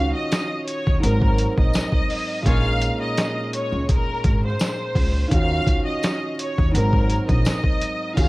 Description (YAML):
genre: hip hop, boom-bap hip-hop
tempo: 84 BPM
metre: 4/4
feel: swing 54% on 16ths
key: unclear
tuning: A4 = 440 Hz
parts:
  - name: clear studio violin section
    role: melody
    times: 0.0-8.3 s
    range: Bb4 to F5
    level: -26 LUFS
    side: equal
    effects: high-pass filter, low-pass filter, cassette tape, analog delay
  - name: dark baby grand piano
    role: accompaniment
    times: 0.0-8.3 s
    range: Ab2 to Bb4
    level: -27 LUFS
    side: right 1 dB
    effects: cassette tape, high-pass filter, low-pass filter
  - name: upright bass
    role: bass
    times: 0.0-8.3 s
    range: Ab1 to Eb2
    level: -22 LUFS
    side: equal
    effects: none
  - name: boom bap sampler-style drum kit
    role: drums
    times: 0.3-8.3 s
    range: crash cymbal, hi-hat, kick drum, snare drum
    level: -21 LUFS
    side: equal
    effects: cassette tape
  - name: tambourine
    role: percussion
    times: 0.3-7.6 s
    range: none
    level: -37 LUFS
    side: left 3 dB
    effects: none
  - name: warm trumpet section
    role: stabs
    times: 2.5-2.7 s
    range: F4 to Db5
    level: -34 LUFS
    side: left 2 dB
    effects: high-pass filter, low-pass filter, cassette tape, analog delay
room: little or no reverb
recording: home recording on cassette, vinyl crackle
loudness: -18 LUFS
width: side -20 dB against mid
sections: 0.0-8.2 A section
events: none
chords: 0.0 Ebm9; 1.0 Ab9; 2.5 Bbm11; 5.3 Ebm9; 6.7 Ab9